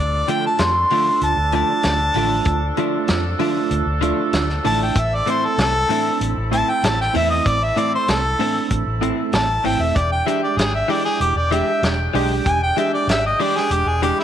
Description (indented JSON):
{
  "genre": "straight-eighth soul blues",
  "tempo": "96 BPM",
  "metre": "4/4",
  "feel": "straight",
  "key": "A harmonic minor",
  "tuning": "A4 = 439 Hz",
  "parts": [
    { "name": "clear harmonica", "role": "melody", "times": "0.0-14.2 s", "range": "E4 to C6", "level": "-20 LUFS", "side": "left 1 dB", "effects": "overdrive" },
    { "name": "warm horn section", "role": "sustained chords", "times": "0.0-14.2 s", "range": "F3 to G5", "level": "-28 LUFS", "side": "equal", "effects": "none" },
    { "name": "vintage muted fingered electric bass", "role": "bass", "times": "0.0-14.1 s", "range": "E1 to F2", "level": "-23 LUFS", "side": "equal", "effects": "none" },
    { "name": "tine electric piano", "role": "accompaniment", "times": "0.3-14.2 s", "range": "G#3 to G4", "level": "-25 LUFS", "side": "right 10 dB", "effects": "overdrive, fast stereo tremolo" },
    { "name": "direct-recorded clean electric guitar", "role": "stabs", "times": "0.3-14.2 s", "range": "A2 to G4", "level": "-27 LUFS", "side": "left 9 dB", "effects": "wide subtle chorus" },
    { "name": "warm soul drum kit", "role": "drums", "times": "0.3-14.2 s", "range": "hi-hat, kick drum, snare drum", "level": "-24 LUFS", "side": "equal", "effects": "none" }
  ],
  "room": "moderate echo chamber reverb, RT60 1.7 s, studio ambience",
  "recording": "1960s-style stereo with parts hard left and right, lossy compression artefacts",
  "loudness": "-16 LUFS",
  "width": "side -10 dB against mid",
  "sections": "0.0-14.2 A section",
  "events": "none",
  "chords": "0.0 Dm; 5.0 Am; 10.0 E7#9"
}